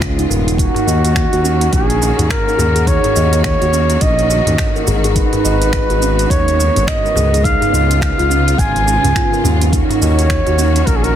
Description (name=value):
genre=organic downtempo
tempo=105 BPM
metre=4/4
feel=swing 60% on 16ths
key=Eb minor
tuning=A4 = 440 Hz
part: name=trumpet with bucket mute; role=melody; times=0.0-11.2 s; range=Gb4 to Ab5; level=-18 LUFS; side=equal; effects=tape echo
part: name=rich studio string section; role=sustained chords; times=0.0-11.2 s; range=Db3 to Gb4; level=-22 LUFS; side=equal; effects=sidechain pumping
part: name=smooth synth bass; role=bass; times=0.0-11.2 s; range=Eb1 to Eb2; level=-16 LUFS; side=equal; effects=tube saturation, sidechain pumping
part: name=afro-pop drum kit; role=drums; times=0.0-11.1 s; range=finger snaps, hi-hat, shaker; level=-23 LUFS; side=right 3 dB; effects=studio reverb, soft clipping on snare
part: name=electronic kick drum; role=drums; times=0.0-11.0 s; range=none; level=-18 LUFS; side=equal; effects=studio reverb
part: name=steel tongue drum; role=arpeggios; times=0.2-11.1 s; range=Db4 to Eb5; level=-20 LUFS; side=right 2 dB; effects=tape echo
part: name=darbuka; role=percussion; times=0.3-10.8 s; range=none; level=-24 LUFS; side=left 2 dB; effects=none
room=light reverb, small room ambience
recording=dense, heavily limited modern master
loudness=-12 LUFS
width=side -10 dB against mid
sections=0.0-11.2 A section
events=none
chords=0.0 Db7; 0.6 Ebm7; 5.2 Abm7; 7.4 Db7; 9.7 Ebm7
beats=0.02 | 0.59 1.16 1.73 2.30 | 2.87 3.44 4.02 4.59 | 5.16 5.73 6.30 6.87 | 7.45 8.02 8.59 9.16 | 9.73 10.30 10.87